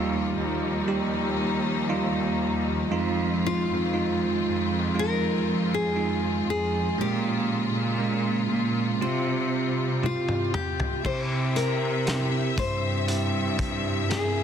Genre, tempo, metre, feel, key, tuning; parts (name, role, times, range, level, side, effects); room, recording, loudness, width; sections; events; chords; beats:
pop ballad; 59 BPM; 4/4; straight; F minor; A4 = 440 Hz
nylon-string guitar; melody; 0.0-14.4 s; F4 to C5; -30 LUFS; left 4 dB; ping-pong delay
bell-like tine electric piano; accompaniment; 0.0-14.4 s; Bb2 to Bb4; -28 LUFS; right 5 dB; phaser
rich studio string section; sustained chords; 0.0-14.4 s; Db3 to E5; -32 LUFS; left 4 dB
clear studio cello section; bass; 0.0-14.4 s; Eb2 to C3; -28 LUFS; equal
loose indie drum kit; drums; 10.0-14.3 s; crash cymbal, hi-hat, kick drum, snare drum, toms; -31 LUFS; left 1 dB
light reverb; dense, heavily limited modern master; -23 LUFS; side -8 dB against mid
0.0-11.1 A section; 11.1-14.4 B section
drum fill 10.0-11.1
0.0 Ebadd9; 2.9 Fm7; 7.0 Bbm7; 9.0 Csus4; 11.1 C
0.88 1.90 | 2.92 3.93 4.95 5.97 | 6.98 8.00 9.02 10.04 | 11.05 12.07 13.09 14.10